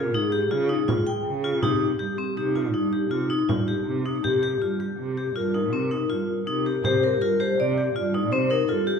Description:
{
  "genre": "contemporary instrumental, chamber music in an uneven meter",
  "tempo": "162 BPM",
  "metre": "7/4",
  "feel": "straight",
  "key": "C phrygian, C dorian from 4.2 s",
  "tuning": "A4 = 441 Hz",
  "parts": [
    { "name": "vibraphone with hard mallets", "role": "second line", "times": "0.0-9.0 s", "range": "Eb4 to D5", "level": "-27 LUFS", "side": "equal", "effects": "none" },
    { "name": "vibraphone with hard mallets", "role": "arpeggios", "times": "0.0-8.9 s", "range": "C4 to G5", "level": "-26 LUFS", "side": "left 5 dB", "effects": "none" },
    { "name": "dark cello", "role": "bass", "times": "0.0-9.0 s", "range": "G2 to Db3", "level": "-28 LUFS", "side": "right 4 dB", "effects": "none" },
    { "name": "frame drum", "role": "percussion", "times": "0.5-9.0 s", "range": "none", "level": "-31 LUFS", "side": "right 2 dB", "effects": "none" }
  ],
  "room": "moderate recital hall reverb, RT60 1.4 s",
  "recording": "recorded in a church or concert hall, lossy compression artefacts",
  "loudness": "-22 LUFS",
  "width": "side -6 dB against mid",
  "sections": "0.0-4.2 A section; 4.2-9.0 B section",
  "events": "none",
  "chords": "0.0 Dbadd9; 1.6 Cm"
}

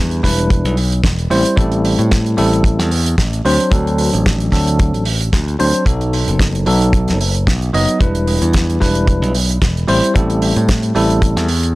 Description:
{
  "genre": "nu-disco, nu disco",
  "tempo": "112 BPM",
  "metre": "4/4",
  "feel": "swing 55% on 16ths",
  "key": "E minor",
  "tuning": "A4 = 442 Hz",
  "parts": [
    { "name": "bell-like tine electric piano", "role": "accompaniment", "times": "0.0-11.5 s", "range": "F#3 to D#5", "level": "-17 LUFS", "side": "equal", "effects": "fast stereo tremolo, sidechain pumping, tape echo" },
    { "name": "modern bright picked electric bass", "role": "bass", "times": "0.0-11.7 s", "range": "E1 to A2", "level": "-16 LUFS", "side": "equal", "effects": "none" },
    { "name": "damped 70s drum kit", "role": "drums", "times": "0.1-11.7 s", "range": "hi-hat, snare drum", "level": "-22 LUFS", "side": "right 2 dB", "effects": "none" },
    { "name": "kick drum", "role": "drums", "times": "0.2-11.3 s", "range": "none", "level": "-15 LUFS", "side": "equal", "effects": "none" }
  ],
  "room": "small room ambience",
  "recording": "dry, gritty hardware recording",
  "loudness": "-12 LUFS",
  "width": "side -20 dB against mid",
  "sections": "0.0-11.8 A section",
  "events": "none",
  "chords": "0.0 Em7; 1.3 Am7; 3.5 D7; 5.9 B7; 8.0 Em7; 9.9 Am7"
}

